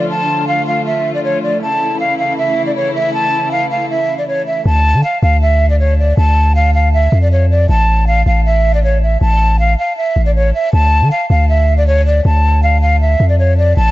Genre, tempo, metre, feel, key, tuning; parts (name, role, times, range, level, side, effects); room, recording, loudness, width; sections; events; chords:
hip hop, trap; 158 BPM; 4/4; half-time; D harmonic minor; A4 = 440 Hz
breathy hollow jazz flute; melody; 0.0-13.9 s; C#5 to A5; -15 LUFS; equal; low-pass filter, digital delay
muted studio string section; sustained chords; 0.0-4.6 s; C#3 to F4; -20 LUFS; left 1 dB
long sustained 808-style bass; bass; 4.7-13.9 s; A1 to D3; -11 LUFS; equal
small room ambience; nothing above 7.7 kHz; -11 LUFS; side -16 dB against mid
0.0-4.7 A section; 4.7-13.9 B section
0.0 Dm; 1.6 A; 4.7 Dm; 7.7 A5; 10.7 Dm